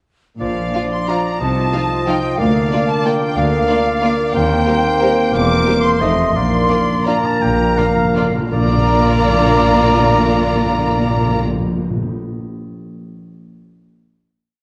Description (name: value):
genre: classical, orchestral ballroom waltz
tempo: 156-196 BPM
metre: 3/4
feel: rubato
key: Bb major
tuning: A4 = 439 Hz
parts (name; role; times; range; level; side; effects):
- rich studio violin section; melody; 0.4-11.4 s; F5 to D6; -27 LUFS; equal; none
- hollow small flute group; second line; 0.4-11.4 s; F5 to D6; -25 LUFS; equal; none
- warm oboe; second line; 0.4-11.4 s; C5 to A5; -26 LUFS; equal; none
- warm bassoon; accompaniment; 0.4-11.4 s; F3 to Bb3; -23 LUFS; equal; none
- mellow French horn section; sustained chords; 0.4-11.4 s; F3 to Eb4; -25 LUFS; equal; none
- concert harp; arpeggios; 0.4-12.4 s; Bb2 to F5; -28 LUFS; equal; none
- rich studio cello section; bass; 0.4-11.4 s; D2 to C3; -25 LUFS; equal; none
- rich studio double bass section; bass; 0.4-11.4 s; E1 to Eb2; -26 LUFS; equal; none
- timpani; percussion; 0.4-0.9, 6.4-12.2 s; Bb2; -24 LUFS; equal; none
- rich studio violin section; second line; 0.7-11.4 s; F4 to F5; -27 LUFS; equal; none
- rich studio viola section; accompaniment; 0.7-11.4 s; F3 to G4; -28 LUFS; equal; none
room: wet recital hall reverb, RT60 1.5 s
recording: worn, warbling old tape, cassette tape, warbly pitch drift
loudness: -16 LUFS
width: mono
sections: 0.4-8.5 A section; 8.5-10.7 final chord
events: slowing down 5.8-8.5; timpani fill 6.4-8.5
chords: 0.4 Bb; 1.4 F7/C; 2.4 Bb/D; 4.3 Cm7/Eb; 5.3 C7/E; 6.0 F7; 6.4 Bb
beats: | 0.40 0.74 1.09 | 1.41 1.74 2.08 | 2.39 2.72 3.05 | 3.37 3.69 4.03 | 4.35 4.67 5.02 | 5.34 5.67 6.01 | 6.35 6.70 7.07 | 7.42 7.78 8.16 | 8.52 8.87 9.24 | 9.58 9.94 10.31